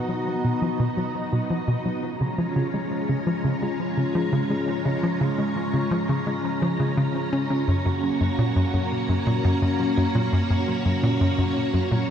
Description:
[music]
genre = ambient, sequencer-driven space music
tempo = 85 BPM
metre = 4/4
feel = straight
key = unclear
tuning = A4 = 440 Hz
[part]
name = string machine, full ensemble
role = sustained chords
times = 0.0-12.1 s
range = G#3 to D#5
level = -26 LUFS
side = equal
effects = phaser, ensemble chorus, shimmer reverb
[part]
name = thumb-piano-like synth pluck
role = arpeggios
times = 0.0-12.0 s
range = E#3 to G#4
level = -36 LUFS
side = left 2 dB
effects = none
[part]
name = wind-like tuned noise texture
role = texture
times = 0.0-12.1 s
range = A#5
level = -35 LUFS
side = right 2 dB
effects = built-in reverb, shimmer reverb
[part]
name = hollow square pluck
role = riff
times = 0.1-12.1 s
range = F#2 to C#4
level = -24 LUFS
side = equal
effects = chorus, analog delay
[sound]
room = wet lush hall reverb, RT60 2.7 s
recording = dark, warm production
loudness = -21 LUFS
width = side -8 dB against mid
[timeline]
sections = 0.0-12.1 A section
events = none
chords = 0.0 B; 2.0 C#; 7.7 F#

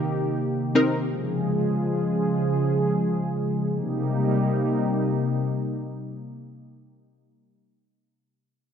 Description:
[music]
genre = dancehall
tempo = free time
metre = none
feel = none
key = C phrygian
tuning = A4 = 440 Hz
[part]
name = warm analog pad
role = sustained chords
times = 0.0-7.1 s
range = C3 to Ab4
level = -23 LUFS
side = equal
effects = chorus
[part]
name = punchy chord stab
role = accompaniment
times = 0.8-1.1 s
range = C4 to Bb4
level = -23 LUFS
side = left 1 dB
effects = chorus
[sound]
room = moderate lush hall reverb, RT60 2.6 s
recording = dark, warm production, nothing above 7.5 kHz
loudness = -22 LUFS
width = side -8 dB against mid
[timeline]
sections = 0.0-3.7 A section; 3.7-6.4 B section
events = none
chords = 0.0 Cm7; 1.1 Db; 3.7 Cm7

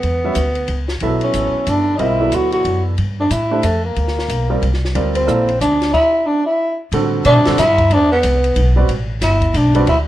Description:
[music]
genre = modal jazz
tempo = 183 BPM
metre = 3/4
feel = swing 62% on 8ths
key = A dorian from 6.9 s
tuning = A4 = 440 Hz
[part]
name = growling tenor saxophone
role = melody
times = 0.0-10.0 s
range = A3 to F#4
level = -16 LUFS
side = equal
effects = none
[part]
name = upright bass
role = bass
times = 0.0-10.1 s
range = G1 to B2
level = -18 LUFS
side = equal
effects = none
[part]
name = compact cocktail drum kit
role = drums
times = 0.0-10.0 s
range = crash cymbal, hi-hat, kick drum, ride cymbal, snare drum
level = -27 LUFS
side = left 1 dB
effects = none
[part]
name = warm concert grand piano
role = accompaniment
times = 0.2-9.9 s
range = D3 to F5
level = -20 LUFS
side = right 2 dB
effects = none
[sound]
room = light reverb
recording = worn, warbling old tape, cassette tape, warbly pitch drift, lossy compression artefacts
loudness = -13 LUFS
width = side -14 dB against mid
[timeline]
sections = 0.0-6.9 A section; 6.9-10.1 B section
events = none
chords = 0.0 Em9; 3.0 Gm9; 5.9 N.C.; 6.9 A9sus4

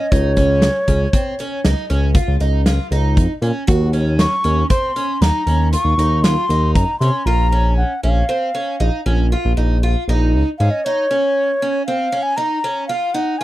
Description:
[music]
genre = progressive instrumental, band music in an uneven meter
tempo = 117 BPM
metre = 7/4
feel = straight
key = Db major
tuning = A4 = 439 Hz
[part]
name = baroque flute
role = melody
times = 0.0-13.4 s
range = Db5 to Db6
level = -19 LUFS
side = left 1 dB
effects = none
[part]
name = picked twelve-string acoustic guitar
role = arpeggios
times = 0.0-13.4 s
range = C4 to Gb4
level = -23 LUFS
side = right 2 dB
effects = none
[part]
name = smooth synth bass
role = bass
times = 0.1-10.7 s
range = Bb1 to C3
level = -16 LUFS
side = equal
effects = none
[part]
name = huge arena drum kit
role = drums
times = 0.1-7.1 s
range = hi-hat, kick drum, snare drum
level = -18 LUFS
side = equal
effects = none
[sound]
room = little or no reverb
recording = dry, close 1970s-style studio recording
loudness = -15 LUFS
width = side -16 dB against mid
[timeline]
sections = 0.0-13.4 A section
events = none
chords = 0.0 Db; 3.7 Eb7(no3); 7.3 Bbm; 10.8 Db

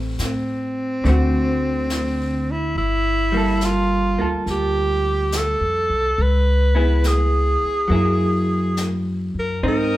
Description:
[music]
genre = jazz ballad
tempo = 70 BPM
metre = 4/4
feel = swing 67% on 8ths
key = unclear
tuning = A4 = 438 Hz
[part]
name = vintage hollow-body jazz guitar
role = accompaniment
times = 0.0-10.0 s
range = D3 to B4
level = -23 LUFS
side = equal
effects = none
[part]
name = upright bass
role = bass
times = 0.0-10.0 s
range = G1 to A2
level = -22 LUFS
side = equal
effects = none
[part]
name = warm tenor saxophone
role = melody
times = 0.2-10.0 s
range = C4 to Cb5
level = -22 LUFS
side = equal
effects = none
[part]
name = jazz brush drum kit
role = drums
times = 0.2-10.0 s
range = brushed snare drum, hi-hat, snare drum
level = -32 LUFS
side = left 1 dB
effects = none
[part]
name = warm studio string section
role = sustained chords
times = 9.6-10.0 s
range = Eb5 to Eb6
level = -30 LUFS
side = left 3 dB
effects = none
[sound]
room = moderate large studio reverb, RT60 1.1 s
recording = band playing live in one room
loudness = -18 LUFS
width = side -15 dB against mid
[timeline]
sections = 0.0-10.0 A section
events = none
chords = 0.0 Am9; 1.0 D7; 2.8 Gm9; 6.2 Dbm7; 7.9 Gb9

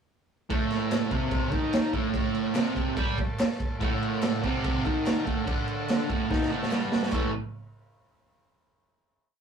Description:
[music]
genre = garage rock duo or trio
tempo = 145 BPM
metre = 4/4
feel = straight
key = unclear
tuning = A4 = 439 Hz
[part]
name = combo organ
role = sustained chords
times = 0.5-7.3 s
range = A4 to F#5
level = -38 LUFS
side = left 3 dB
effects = none
[part]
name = fuzz guitar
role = riff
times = 0.5-7.3 s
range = G2 to G4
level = -28 LUFS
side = right 2 dB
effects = distortion
[part]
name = raw garage drum kit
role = drums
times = 0.5-7.2 s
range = crash cymbal, kick drum, snare drum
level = -28 LUFS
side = right 1 dB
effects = none
[part]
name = group handclap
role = percussion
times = 0.9-7.3 s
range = none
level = -44 LUFS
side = left 3 dB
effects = none
[sound]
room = moderate booth ambience, RT60 0.2 s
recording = rough rehearsal-room recording, tube saturation, small room ambience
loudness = -25 LUFS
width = side -7 dB against mid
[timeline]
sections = 0.5-7.1 riff; 7.1-8.8 final chord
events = drum fill 6.3-7.1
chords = 0.5 D7b9; 7.1 A

